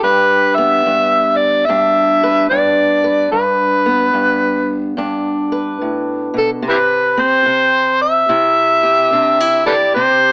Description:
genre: acoustic country blues, solo or duo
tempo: 73 BPM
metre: 4/4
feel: swing 65% on 8ths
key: G major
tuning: A4 = 441 Hz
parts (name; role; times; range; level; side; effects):
- overdriven harmonica; melody; 0.0-10.3 s; E4 to E5; -14 LUFS; equal; none
- fingerpicked steel-string acoustic guitar; accompaniment; 0.0-10.3 s; G2 to B4; -21 LUFS; equal; none
room: light reverb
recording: AM radio sound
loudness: -14 LUFS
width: mono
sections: 0.0-10.3 A section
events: none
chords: 0.0 G; 6.6 C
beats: | 0.02 0.85 1.68 2.51 | 3.34 4.16 4.99 5.82 | 6.64 7.47 8.29 9.12 | 9.95

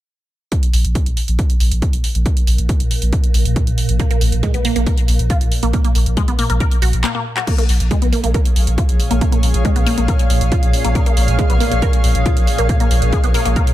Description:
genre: driving peak-time techno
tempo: 138 BPM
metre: 4/4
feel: straight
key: Bb minor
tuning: A4 = 440 Hz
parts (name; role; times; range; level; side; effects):
- swarming drone; drone; 2.2-13.7 s; Bb2; -26 LUFS; equal; built-in reverb, sidechain pumping
- electronic kick drum; drums; 0.5-13.7 s; none; -16 LUFS; equal; none
- techno drum kit; drums; 0.5-13.7 s; crash cymbal, handclaps, hi-hat; -26 LUFS; right 2 dB; sidechain pumping on hats, sidechain pumping on cymbals
- saturated sub bass; bass; 0.7-13.6 s; Bb1; -17 LUFS; equal; sidechain pumping, low-pass filter
- resonant blip pluck; riff; 4.0-13.6 s; Ab3 to Bb4; -22 LUFS; equal; phaser, tube saturation, sidechain pumping, ping-pong delay
- granular cloud pad; texture; 8.5-13.7 s; Ab4 to F5; -23 LUFS; equal; built-in reverb, sidechain pumping
room: digital ambience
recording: none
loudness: -14 LUFS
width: side -14 dB against mid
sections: 0.5-7.5 A section; 7.5-13.7 B section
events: break 7.0-7.5; drum fill 7.0-7.5; filter sweep on synth arpeggio sound 7.5-13.7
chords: 0.5 Bb5; 7.5 Bbm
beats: | 0.52 0.95 1.39 1.82 | 2.26 2.69 3.13 3.56 | 4.00 4.43 4.87 5.30 | 5.74 6.17 6.61 7.04 | 7.47 7.91 8.34 8.78 | 9.21 9.65 10.08 10.52 | 10.95 11.39 11.82 12.26 | 12.69 13.13 13.56

